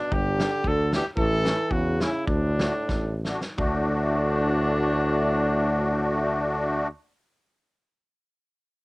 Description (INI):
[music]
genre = alpine folk, alpine dance band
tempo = 80-114 BPM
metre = 2/4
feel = swing 54% on 8ths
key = D major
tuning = A4 = 440 Hz
[part]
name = warm trumpet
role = melody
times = 0.0-6.9 s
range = D4 to A4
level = -28 LUFS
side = equal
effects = cassette tape
[part]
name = clear euphonium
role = second line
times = 0.0-6.9 s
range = A2 to E3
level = -32 LUFS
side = right 2 dB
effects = cassette tape
[part]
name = mellow tuba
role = bass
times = 0.1-6.9 s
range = G1 to E2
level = -26 LUFS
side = equal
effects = tube saturation
[part]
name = loose indie drum kit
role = drums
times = 0.1-3.8 s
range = kick drum, snare drum, toms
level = -29 LUFS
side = equal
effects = cassette tape
[part]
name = musette accordion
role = accompaniment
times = 0.4-6.9 s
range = A3 to G4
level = -26 LUFS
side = left 1 dB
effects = cassette tape
[sound]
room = little or no reverb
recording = home recording on cassette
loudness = -22 LUFS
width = side -23 dB against mid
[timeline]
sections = 0.0-3.6 A section; 3.6-6.5 B section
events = slowing down 1.2-3.6; drum fill 2.9-3.6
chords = 0.1 G; 1.2 A; 2.3 D